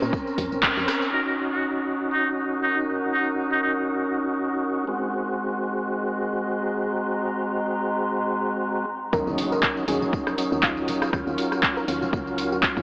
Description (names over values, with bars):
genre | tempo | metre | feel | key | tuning
deep house | 120 BPM | 4/4 | swing 55% on 16ths | Eb dorian | A4 = 440 Hz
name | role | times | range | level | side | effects
tonewheel organ | stabs | 0.0-12.8 s | Gb3 to Bb4 | -25 LUFS | equal | chorus vibrato, stopped rotary speaker, sidechain pumping, low-pass filter, analog delay
woody FM bass | bass | 0.0-0.9, 9.1-12.8 s | Eb1 to Bb2 | -31 LUFS | equal | sidechain pumping
punchy analog drum machine | drums | 0.0-1.1, 9.1-12.8 s | handclaps, hi-hat, rim click, tambourine | -26 LUFS | equal | low-pass filter on perc, low-pass filter on hats, low-pass filter on snare, low-pass filter on room
electronic kick drum | drums | 0.1-0.7, 9.1-12.8 s | none | -28 LUFS | equal | overdrive
trumpet with metal mute | melody | 1.1-3.7 s | Eb4 to Bb4 | -26 LUFS | equal | analog delay
warbly tape-like pad | texture | 1.8-12.8 s | Eb4 to C6 | -31 LUFS | equal | chorus, built-in reverb, sidechain pumping
soft round pluck | melody | 9.1-12.8 s | F4 to Bb4 | -31 LUFS | equal | ensemble chorus, cassette tape, analog delay
impact | sound effects | 9.3-11.1 s | none | -39 LUFS | equal | none
room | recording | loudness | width
wet cathedral reverb, RT60 4.6 s | dreamy mix soaked in reverb, AM radio sound | -22 LUFS | side -25 dB against mid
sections
0.0-1.1 A section; 1.1-9.1 B section; 9.1-12.8 C section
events
band accent 0.6; filter sweep on tonewheel organ 1.1-9.1; drop 9.1-12.8; impact 9.1-11.1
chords
0.0 Bbmadd9; 1.1 Ebm7; 4.9 Ab7; 9.1 Ebm7